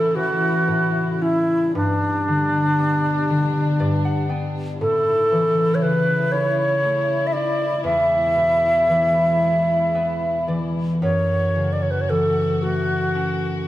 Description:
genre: celtic folk, Celtic slow air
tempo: 38 BPM (dotted quarters)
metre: 6/8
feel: rubato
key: A major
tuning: A4 = 444 Hz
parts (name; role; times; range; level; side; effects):
- bright reedy baroque flute; melody; 0.0-13.7 s; D4 to E5; -19 LUFS; equal; none
- concert harp; accompaniment; 0.0-13.7 s; E2 to G5; -23 LUFS; left 1 dB; none
- dark chamber string section; sustained chords; 0.0-13.7 s; B2 to F#4; -30 LUFS; left 2 dB; none
room: wet stone room reverb, RT60 1.3 s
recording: band playing live in one room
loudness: -18 LUFS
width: side -14 dB against mid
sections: 0.0-13.7 A section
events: harp fill 3.3-4.8, 9.4-11.0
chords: 0.0 A; 1.7 G; 4.8 A; 7.8 E; 11.0 F#m7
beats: 0.15 | 1.74 3.29 | 4.80 6.32 | 7.84 9.40 | 11.01 12.62

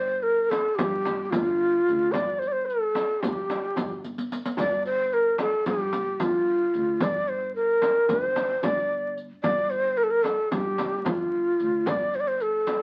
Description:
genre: Turkish makam ensemble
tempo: 222 BPM (eighths)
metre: 9/8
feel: straight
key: G makam ussak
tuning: A4 = 437 Hz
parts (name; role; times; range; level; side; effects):
- breathy bright low ney; melody; 0.0-12.8 s; F4 to D5; -26 LUFS; equal; none
- upright bass; bass; 0.0-12.7 s; G1 to G2; -40 LUFS; equal; none
- darbuka; percussion; 0.5-12.8 s; none; -40 LUFS; equal; none
- frame drum; percussion; 0.5-12.8 s; none; -33 LUFS; equal; none
- riq; percussion; 0.5-12.8 s; none; -38 LUFS; equal; none
room: light reverb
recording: very old 78 rpm record, vinyl crackle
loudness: -25 LUFS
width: mono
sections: 0.0-12.8 A section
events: drum fill 4.0-4.6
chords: none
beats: 0.25 0.52 0.79 1.06 1.33 1.60 1.87 | 2.14 2.41 2.69 2.96 3.23 3.50 3.77 4.04 4.31 | 4.58 4.85 5.12 5.39 5.66 5.93 6.20 6.47 6.74 | 7.01 7.28 7.55 7.82 8.09 8.36 8.63 8.90 9.17 | 9.44 9.71 9.98 10.25 10.52 10.79 11.06 11.33 11.60 | 11.87 12.14 12.41 12.68

